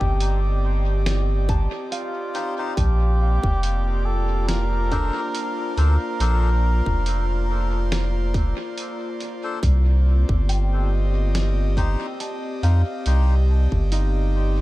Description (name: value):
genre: ambient dub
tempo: 70 BPM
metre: 4/4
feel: swing 55% on 16ths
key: C dorian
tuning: A4 = 438 Hz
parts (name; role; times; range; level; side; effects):
- trumpet with cup mute; melody; 0.0-8.3 s; F4 to Bb4; -30 LUFS; equal; dub echo
- airy breathy pad; sustained chords; 0.0-14.6 s; Bb3 to Eb5; -30 LUFS; equal; chorus
- concert harp; arpeggios; 0.0-14.6 s; D4 to A5; -36 LUFS; left 1 dB; dub echo
- soft dub sub bass; bass; 0.0-14.6 s; F1 to F2; -19 LUFS; equal; none
- electronic kick drum; drums; 0.0-13.9 s; none; -23 LUFS; equal; none
- lo-fi sampler-style drum kit; drums; 0.2-14.1 s; hi-hat, snare drum; -32 LUFS; equal; dub echo
- melodica; stabs; 2.3-13.4 s; D4 to C5; -35 LUFS; left 4 dB; dub echo
room: small room ambience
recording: dark, warm production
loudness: -19 LUFS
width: side -18 dB against mid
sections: 0.0-14.6 A section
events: none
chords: 0.0 Cm; 2.8 Bbmaj7; 9.6 Cm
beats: 0.20 1.06 1.92 | 2.77 3.63 4.49 5.35 | 6.20 7.06 7.92 8.78 | 9.63 10.49 11.35 12.20 | 13.06 13.92